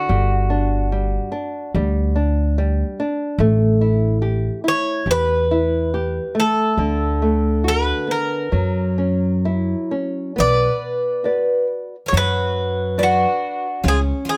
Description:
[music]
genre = fado-style ballad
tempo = 62-73 BPM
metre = 4/4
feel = rubato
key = B minor from 10.4 s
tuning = A4 = 438 Hz
[part]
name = Greek bouzouki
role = melody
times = 0.0-14.4 s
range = F#4 to D5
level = -23 LUFS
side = equal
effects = none
[part]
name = nylon-string guitar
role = accompaniment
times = 0.0-14.4 s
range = D3 to D5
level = -25 LUFS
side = equal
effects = none
[part]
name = upright bass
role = bass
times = 0.1-14.1 s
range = G1 to F#2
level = -22 LUFS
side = equal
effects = none
[part]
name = picked twelve-string acoustic guitar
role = second line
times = 10.4-14.4 s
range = D4 to B4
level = -26 LUFS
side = equal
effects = none
[sound]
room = light reverb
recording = none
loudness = -20 LUFS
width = mono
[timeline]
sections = 0.0-10.4 A section; 10.4-14.4 B section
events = none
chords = 0.1 G5; 3.4 A5; 6.8 D6; 8.5 F#7; 10.4 Bm; 13.8 C#

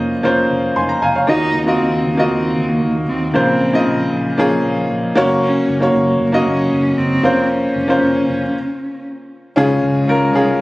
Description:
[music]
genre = piano-driven pop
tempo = 116 BPM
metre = 4/4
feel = straight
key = unclear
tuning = A4 = 440 Hz
[part]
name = clear upright piano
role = accompaniment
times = 0.0-10.6 s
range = Bb2 to C6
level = -15 LUFS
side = equal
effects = none
[part]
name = vintage muted fingered electric bass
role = bass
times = 0.0-10.6 s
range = F1 to Eb2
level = -23 LUFS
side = equal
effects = none
[part]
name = dark cello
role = melody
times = 1.3-10.6 s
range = Ab3 to Eb4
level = -20 LUFS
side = right 1 dB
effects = none
[sound]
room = light reverb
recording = recorded on a phone in the room, studio reverb, compression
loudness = -13 LUFS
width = side -20 dB against mid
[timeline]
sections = 0.0-9.6 A section; 9.6-10.6 B section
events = stop 8.5-9.6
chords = 0.0 Bbmadd9/F; 1.3 Ebmadd9; 3.4 Bbmadd9; 5.2 Gb; 7.2 Bbmadd9/F; 9.6 Db

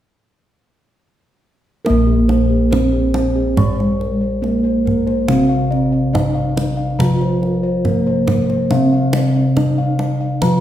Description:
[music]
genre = Javanese gamelan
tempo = 70 BPM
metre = 4/4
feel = straight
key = Bb slendro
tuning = A4 = 440 Hz
[part]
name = gamelan-type bossed gongs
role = bass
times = 1.8-10.6 s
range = Bb1 to Bb4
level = -20 LUFS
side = left 1 dB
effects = none
[part]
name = gamelan-type bronze metallophone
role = melody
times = 1.9-10.6 s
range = Ab3-45c to F4+25c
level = -19 LUFS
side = right 3 dB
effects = none
[part]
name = gamelan-type bronze metallophone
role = accompaniment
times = 1.9-10.6 s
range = C3+30c to Bb3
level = -19 LUFS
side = left 1 dB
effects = none
[part]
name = kendang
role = percussion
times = 1.9-10.6 s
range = none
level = -22 LUFS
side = right 2 dB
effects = none
[part]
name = gamelan-type bossed gongs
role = arpeggios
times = 2.1-10.4 s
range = Ab4-45c to F5+25c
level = -24 LUFS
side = left 4 dB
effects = none
[sound]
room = wet recital hall reverb, RT60 1.4 s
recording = recorded in a church or concert hall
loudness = -14 LUFS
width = side -12 dB against mid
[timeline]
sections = 1.9-10.6 A section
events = none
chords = none

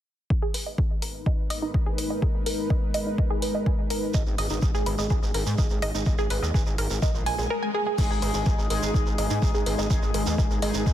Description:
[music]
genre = melodic techno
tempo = 125 BPM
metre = 4/4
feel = straight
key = G# minor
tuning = A4 = 442 Hz
[part]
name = dark analog pad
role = sustained chords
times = 1.1-10.9 s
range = G#3 to B4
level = -33 LUFS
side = left 1 dB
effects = chorus, sidechain pumping
[part]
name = electronic kick drum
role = drums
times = 0.3-10.9 s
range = none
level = -24 LUFS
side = equal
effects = none
[part]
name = analog pluck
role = arpeggios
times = 0.4-10.8 s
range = D#4 to G#5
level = -31 LUFS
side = right 2 dB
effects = chorus, phaser, vintage 12-bit sampler grit, sidechain pumping, tape echo
[part]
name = deep house drum kit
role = drums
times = 0.5-10.7 s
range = crash cymbal, hi-hat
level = -34 LUFS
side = left 1 dB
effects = none
[part]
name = gritty driven synth bass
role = bass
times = 4.1-10.9 s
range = G#1 to G#2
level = -29 LUFS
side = equal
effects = distortion, tube saturation, sidechain pumping
[part]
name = shekere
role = percussion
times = 4.1-10.9 s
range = none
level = -36 LUFS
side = right 6 dB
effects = none
[part]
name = swell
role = sound effects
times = 7.2-8.0 s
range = none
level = -35 LUFS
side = left 3 dB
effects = none
[part]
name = analog synth brass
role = stabs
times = 8.0-10.9 s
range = G#3 to G#4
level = -29 LUFS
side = left 2 dB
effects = chorus, sidechain pumping, tape echo
[part]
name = analog drone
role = drone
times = 9.8-10.9 s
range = G#2 to G#3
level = -38 LUFS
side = equal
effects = none
[sound]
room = light reverb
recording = dense, heavily limited modern master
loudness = -23 LUFS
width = side -11 dB against mid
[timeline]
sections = 0.3-8.0 A section; 8.0-10.9 B section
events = filter sweep on synth arpeggio sound 0.3-8.0, 8.0-10.9; swell 7.2-8.0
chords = 0.3 G#m

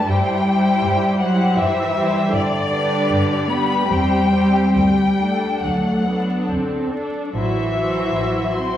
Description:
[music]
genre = classical, slow romantic movement for string orchestra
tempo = 69-81 BPM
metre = 3/4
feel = rubato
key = unclear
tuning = A4 = 440 Hz
[part]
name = muted chamber violin section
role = melody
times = 0.0-8.8 s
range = D5 to C6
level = -22 LUFS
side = left 4 dB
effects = none
[part]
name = muted chamber violin section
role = second line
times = 0.0-8.8 s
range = D4 to C5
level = -25 LUFS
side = equal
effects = none
[part]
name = muted symphonic viola section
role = accompaniment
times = 0.0-8.8 s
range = F#3 to E4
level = -24 LUFS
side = right 2 dB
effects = none
[part]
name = muted chamber cello section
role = bass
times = 0.0-8.8 s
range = D3 to C4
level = -20 LUFS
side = equal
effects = none
[part]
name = muted symphonic double bass section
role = bass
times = 0.1-8.8 s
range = A1 to G2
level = -26 LUFS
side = equal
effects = none
[sound]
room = wet scoring stage reverb, RT60 1.6 s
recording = recorded in a church or concert hall, vinyl crackle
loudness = -16 LUFS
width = side -11 dB against mid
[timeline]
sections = 0.0-8.8 A section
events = none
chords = 0.1 C/G; 2.3 G; 3.9 C/E; 4.8 D; 7.4 F#m7b5/A

